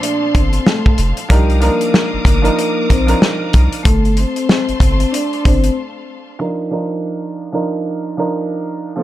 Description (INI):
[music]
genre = hip hop, boom-bap hip-hop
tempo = 94 BPM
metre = 4/4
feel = swing 60% on 16ths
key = unclear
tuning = A4 = 439 Hz
[part]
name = vibraphone with soft mallets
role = melody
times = 0.0-5.7 s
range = G3 to D5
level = -19 LUFS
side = left 2 dB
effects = high-pass filter, low-pass filter, ping-pong delay
[part]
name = dark grand piano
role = accompaniment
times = 0.0-9.0 s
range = Bb2 to Bb4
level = -20 LUFS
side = right 3 dB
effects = high-pass filter, low-pass filter
[part]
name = clear studio string section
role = sustained chords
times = 0.0-6.4 s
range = A3 to Eb6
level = -26 LUFS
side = left 3 dB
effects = high-pass filter, low-pass filter
[part]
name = warm soul drum kit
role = drums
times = 0.0-5.8 s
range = hi-hat, kick drum, snare drum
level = -14 LUFS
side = equal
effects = none
[part]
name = soft dub sub bass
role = bass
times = 0.3-5.7 s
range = F1 to C2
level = -15 LUFS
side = equal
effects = none
[sound]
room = small room ambience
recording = none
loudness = -13 LUFS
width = side -14 dB against mid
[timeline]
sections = 0.0-6.4 A section; 6.4-9.0 B section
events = break 3.9-6.4; filter sweep on grand piano 6.4-9.0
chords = 0.0 Gm11; 1.3 Cm11; 3.9 G9sus4; 6.4 Bbadd11/F